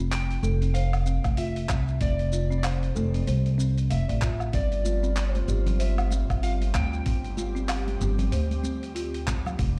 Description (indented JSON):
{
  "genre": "organic downtempo",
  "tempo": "95 BPM",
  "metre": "4/4",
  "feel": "swing 59% on 16ths",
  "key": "unclear",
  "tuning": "A4 = 442 Hz",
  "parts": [
    { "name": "folk marimba with soft mallets", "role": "arpeggios", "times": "0.0-9.8 s", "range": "C4 to F5", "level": "-38 LUFS", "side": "equal", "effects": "delay" },
    { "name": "upright bass", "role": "bass", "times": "0.0-9.8 s", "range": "F1 to D2", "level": "-28 LUFS", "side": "equal", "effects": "sidechain pumping" },
    { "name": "electric slide guitar", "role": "melody", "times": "0.1-8.6 s", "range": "C5 to G5", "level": "-38 LUFS", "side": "equal", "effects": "tape echo" },
    { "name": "dusty soul sampler-style drum kit", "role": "drums", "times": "0.1-9.7 s", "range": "handclaps, hi-hat, shaker, woodblock", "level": "-38 LUFS", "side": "equal", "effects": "none" },
    { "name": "electronic kick drum", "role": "drums", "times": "1.2-9.7 s", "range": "none", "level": "-30 LUFS", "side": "equal", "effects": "none" },
    { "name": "airy breathy pad", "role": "sustained chords", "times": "4.5-9.8 s", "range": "D3 to D5", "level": "-40 LUFS", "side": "equal", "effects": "chorus, sidechain pumping" },
    { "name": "congas", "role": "percussion", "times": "4.9-9.6 s", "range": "none", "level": "-40 LUFS", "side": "equal", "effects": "none" }
  ],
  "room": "little or no reverb",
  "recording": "played on a big sound system in a bare room, large studio reverb",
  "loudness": "-26 LUFS",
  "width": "mono",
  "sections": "0.0-9.8 A section",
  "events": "none",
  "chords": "0.0 Dm7/F (rootless); 4.5 G7sus4"
}